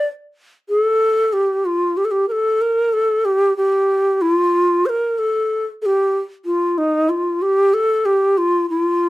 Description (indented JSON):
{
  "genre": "turkish",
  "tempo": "94 BPM",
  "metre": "4/4",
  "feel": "straight",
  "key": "unclear",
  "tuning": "A4 = 441 Hz",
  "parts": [
    { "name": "breathy bright low ney", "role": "solo", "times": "0.0-9.1 s", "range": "Eb4 to C5", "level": "-15 LUFS", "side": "equal", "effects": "none" }
  ],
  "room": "moderate small room reverb, RT60 0.5 s",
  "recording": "none",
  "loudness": "-15 LUFS",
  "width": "side -18 dB against mid",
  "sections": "0.7-9.1 A section",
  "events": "none",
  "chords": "none"
}